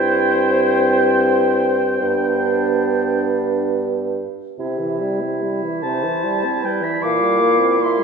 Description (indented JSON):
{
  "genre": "classical, slow romantic movement for wind quintet",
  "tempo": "46-52 BPM (dotted quarters)",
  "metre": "12/8",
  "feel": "rubato",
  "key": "C major",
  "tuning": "A4 = 440 Hz",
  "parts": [
    { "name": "silver concert flute", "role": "melody", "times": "0.0-8.0 s", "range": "B4 to F5", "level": "-25 LUFS", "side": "left 1 dB", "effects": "none" },
    { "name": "warm oboe", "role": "second line", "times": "0.0-8.0 s", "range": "G5 to D6", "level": "-22 LUFS", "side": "right 1 dB", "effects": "none" },
    { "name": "warm French horn", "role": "accompaniment", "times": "0.0-8.0 s", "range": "C3 to C4", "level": "-23 LUFS", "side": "equal", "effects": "none" },
    { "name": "warm clarinet", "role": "accompaniment", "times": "0.0-8.0 s", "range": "D4 to E4", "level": "-25 LUFS", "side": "right 5 dB", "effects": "none" },
    { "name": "mellow bassoon", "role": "bass", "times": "0.0-8.0 s", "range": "G2 to C3", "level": "-20 LUFS", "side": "right 1 dB", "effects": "none" }
  ],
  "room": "wet scoring stage reverb, RT60 1.9 s",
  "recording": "heard from further back in the room",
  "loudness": "-16 LUFS",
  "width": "side -6 dB against mid",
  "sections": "0.0-8.0 A section",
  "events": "none",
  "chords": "0.0 Gsus4; 2.0 G; 4.6 C; 7.0 C7/Bb"
}